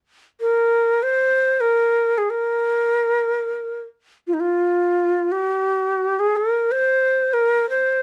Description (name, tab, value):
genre	Arabic maqam ensemble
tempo	free time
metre	none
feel	none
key	unclear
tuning	A4 = 440 Hz
part	breathy bright ney	solo	0.4-8.0 s	Eb4 to C5	-20 LUFS	equal	none
room	light reverb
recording	dark, warm production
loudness	-20 LUFS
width	mono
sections	0.0-8.0 A section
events	none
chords	none